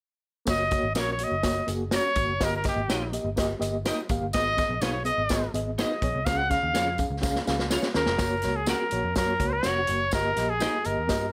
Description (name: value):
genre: uptempo 1960s-style soul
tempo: 124 BPM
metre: 4/4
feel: straight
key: F# major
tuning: A4 = 443 Hz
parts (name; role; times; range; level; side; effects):
- clear trumpet; melody; 0.5-11.3 s; G4 to F#5; -29 LUFS; equal; none
- mellow reed electric piano; accompaniment; 0.5-11.3 s; G2 to E#5; -33 LUFS; equal; fast tremolo
- vintage muted picked electric bass; bass; 0.5-11.3 s; E#1 to G2; -35 LUFS; equal; none
- vintage drum kit; drums; 0.5-11.2 s; hi-hat, kick drum, snare drum; -32 LUFS; equal; none
- tambourine; percussion; 0.5-11.2 s; none; -43 LUFS; equal; none
- clean electric guitar; stabs; 1.0-10.8 s; C#4 to F#5; -36 LUFS; equal; ensemble chorus
room: light reverb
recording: none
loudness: -26 LUFS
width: mono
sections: 0.5-8.2 A section; 8.2-11.3 B section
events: drum fill 7.2-8.2; reed electric piano fill 7.5-8.2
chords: 0.5 F#; 2.4 D#/G; 4.3 G#m; 6.3 C#; 8.2 F#; 10.1 D#/G